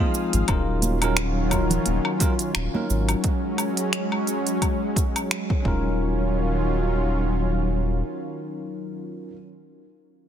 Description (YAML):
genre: sunset chillout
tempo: 87 BPM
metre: 4/4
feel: swing 56% on 16ths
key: Eb minor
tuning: A4 = 440 Hz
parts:
  - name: barky tine electric piano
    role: accompaniment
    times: 0.0-9.4 s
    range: F3 to Bb4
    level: -29 LUFS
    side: moving between left 5 dB and right 4 dB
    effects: auto-pan, vintage 12-bit sampler grit, tape echo
  - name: lush unison pad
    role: sustained chords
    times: 0.0-9.3 s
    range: Eb3 to Eb6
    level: -27 LUFS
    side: equal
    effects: chorus
  - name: deep house drum kit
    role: drums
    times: 0.1-5.5 s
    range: finger snaps, hi-hat, shaker, woodblock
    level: -28 LUFS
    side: equal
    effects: soft clipping on snare
  - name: warm sub bass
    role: bass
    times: 0.3-8.0 s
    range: Eb1 to Ab1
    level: -24 LUFS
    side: equal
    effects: none
  - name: electronic kick drum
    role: drums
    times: 0.5-5.8 s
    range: none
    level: -24 LUFS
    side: equal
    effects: none
  - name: congas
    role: percussion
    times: 0.8-2.9 s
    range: none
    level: -28 LUFS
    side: right 2 dB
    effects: none
room: light reverb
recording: dense, heavily limited modern master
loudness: -21 LUFS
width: side -9 dB against mid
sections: 0.5-6.0 A section; 6.0-8.8 B section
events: none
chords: 0.5 Ebm9; 2.9 Ab7sus4; 5.7 Ebm9